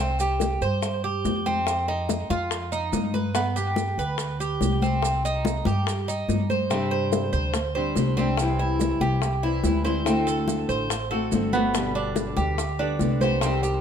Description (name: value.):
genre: latin, Cuban son and guajira.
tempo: 143 BPM.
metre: 4/4.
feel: straight.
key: unclear.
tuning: A4 = 440 Hz.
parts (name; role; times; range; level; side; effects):
Cuban tres; arpeggios; 0.0-13.8 s; B3 to C5; -27 LUFS; right 3 dB; tape echo.
upright bass; bass; 0.0-13.8 s; G1 to G2; -27 LUFS; equal; none.
congas; percussion; 0.0-13.8 s; none; -30 LUFS; left 4 dB; none.
bongos; percussion; 0.2-13.8 s; none; -32 LUFS; left 6 dB; none.
maracas; percussion; 0.2-13.8 s; none; -38 LUFS; right 8 dB; none.
nylon-string guitar; accompaniment; 6.7-13.8 s; B2 to G4; -27 LUFS; left 3 dB; none.
room: moderate studio reverb, RT60 0.9 s.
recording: none.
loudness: -22 LUFS.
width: side -8 dB against mid.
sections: 0.0-13.8 A section.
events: none.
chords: 0.0 C5; 1.7 F5; 3.3 G; 5.0 Cm; 6.7 Gsus4; 8.4 C; 10.1 D7; 11.7 G.